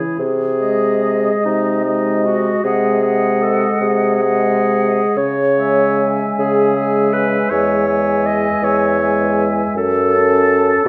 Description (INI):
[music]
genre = classical, slow romantic movement for wind quintet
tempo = 41-55 BPM (dotted quarters)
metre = 6/8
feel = rubato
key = C# minor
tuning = A4 = 440 Hz
[part]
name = warm oboe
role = second line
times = 0.0-10.9 s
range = G#4 to A5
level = -26 LUFS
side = equal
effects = none
[part]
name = bright clarinet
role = accompaniment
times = 0.0-10.9 s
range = D#4 to D#5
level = -20 LUFS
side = equal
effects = none
[part]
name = warm French horn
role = accompaniment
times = 0.0-10.9 s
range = E3 to C#4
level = -25 LUFS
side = equal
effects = none
[part]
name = mellow bassoon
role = bass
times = 0.0-10.9 s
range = E2 to C#3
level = -21 LUFS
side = equal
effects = none
[part]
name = hollow concert flute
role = melody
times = 0.6-10.9 s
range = D#5 to A5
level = -26 LUFS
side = equal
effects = none
[sound]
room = moderate recital hall reverb, RT60 1.5 s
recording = none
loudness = -16 LUFS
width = mono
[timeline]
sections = 0.2-10.9 A section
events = none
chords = 0.2 G#/B#; 2.6 G#7/B#; 5.2 C#m; 7.5 C#m/E; 9.8 F#m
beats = | 0.19 1.46 | 2.65 3.81 | 5.17 6.39 | 7.52 8.63 | 9.76 10.86